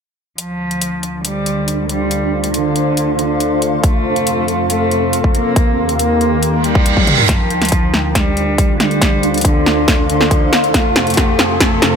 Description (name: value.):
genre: heavy wobble dubstep.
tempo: 139 BPM.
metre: 4/4.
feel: half-time.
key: D phrygian.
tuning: A4 = 445 Hz.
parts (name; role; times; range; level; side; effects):
warm cello; melody; 0.4-12.0 s; D3 to Bb3; -19 LUFS; left 1 dB; dub echo.
lush unison pad; sustained chords; 0.7-12.0 s; D2 to C5; -20 LUFS; right 1 dB; chorus, sidechain pumping.
big-room dance drum kit; drums; 0.4-11.9 s; hi-hat, snare drum, toms; -17 LUFS; equal; none.
granular cloud pad; texture; 1.3-12.0 s; C4 to C6; -19 LUFS; right 1 dB; built-in reverb, sidechain pumping.
electronic kick drum; drums; 3.8-11.7 s; none; -15 LUFS; equal; none.
reverse cymbal and riser; sound effects; 6.6-12.0 s; none; -21 LUFS; right 3 dB; none.
room: light reverb.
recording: none.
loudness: -12 LUFS.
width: side -6 dB against mid.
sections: 0.4-7.3 A section; 7.3-12.0 B section.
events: filter sweep on analog synth pad 0.4-7.3, 7.3-12.0; reverse cymbal 6.6-7.3; drum fill 7.0-7.3, 7.3-12.0; build-up 7.3-12.0; riser 7.3-12.0.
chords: 0.4 Dm7; 3.8 F; 5.6 Eb; 7.3 Dm7; 10.7 F.